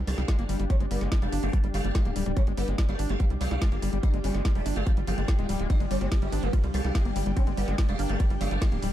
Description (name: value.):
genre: psychedelic trance.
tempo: 144 BPM.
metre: 4/4.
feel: straight.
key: unclear.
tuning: A4 = 440 Hz.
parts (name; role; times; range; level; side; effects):
swarming drone; sustained chords; 0.0-8.9 s; G3 to F4; -37 LUFS; left 1 dB; built-in reverb, sidechain pumping.
tight sequencer bass; bass; 0.0-8.9 s; D1 to C2; -29 LUFS; equal; none.
ethereal airy pad; texture; 0.0-8.9 s; D4 to G5; -38 LUFS; left 1 dB; ensemble chorus, built-in reverb, phaser, sidechain pumping.
sitar; melody; 0.1-8.9 s; G3 to D4; -36 LUFS; right 1 dB; phaser, sidechain pumping, ping-pong delay.
screaming distorted acid line; riff; 0.1-8.9 s; F3 to D4; -35 LUFS; moving between left 8 dB and right 6 dB; distortion, chorus, auto-pan, sidechain pumping, digital delay.
drum and bass drum kit; drums; 0.1-8.9 s; hi-hat, ride cymbal, snare drum; -38 LUFS; equal; none.
electronic kick drum; drums; 0.3-8.7 s; none; -24 LUFS; equal; none.
resonant blip pluck; second line; 6.3-8.2 s; Bb3 to F4; -45 LUFS; left 2 dB; phaser, sidechain pumping, high-pass filter, digital delay.
room: digital ambience.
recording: dark, warm production.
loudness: -24 LUFS.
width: side -12 dB against mid.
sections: 0.0-8.9 A section.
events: none.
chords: 0.0 G5.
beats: 0.28 | 0.70 1.12 1.53 1.95 | 2.37 2.78 3.20 3.62 | 4.03 4.45 4.87 5.28 | 5.70 6.12 6.53 6.95 | 7.37 7.78 8.20 8.62.